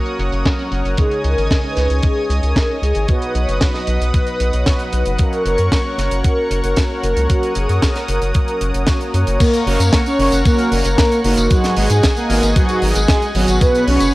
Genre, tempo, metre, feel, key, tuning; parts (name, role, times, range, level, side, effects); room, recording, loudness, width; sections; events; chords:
italo disco; 114 BPM; 4/4; straight; F# major; A4 = 440 Hz
lush unison pad; sustained chords; 0.0-14.1 s; G#4 to D#6; -24 LUFS; equal; chorus
analog synth brass; stabs; 0.0-14.0 s; G#2 to A#4; -26 LUFS; right 1 dB; chorus
tight funk drum kit; drums; 0.1-14.1 s; crash cymbal, hi-hat, snare drum, tambourine; -22 LUFS; right 1 dB; low-pass filter on hats, low-pass filter on cymbals, low-pass filter on snare, low-pass filter on perc, low-pass filter on room
round analog bass; bass; 0.2-14.1 s; F#1 to G#2; -18 LUFS; equal; transformer saturation
electronic kick drum; drums; 0.5-13.7 s; -16 LUFS; equal
mellow synth brass; melody; 1.0-14.1 s; F#3 to D#5; -19 LUFS; equal; chorus, cassette tape, tape echo
small room ambience; dry, gritty hardware recording, cassette tape; -14 LUFS; side -19 dB against mid
0.0-9.4 A section; 9.4-14.1 B section
0.0 F#; 1.0 C#sus2; 3.1 B; 5.2 F#; 11.5 G#m7; 13.6 Bsus2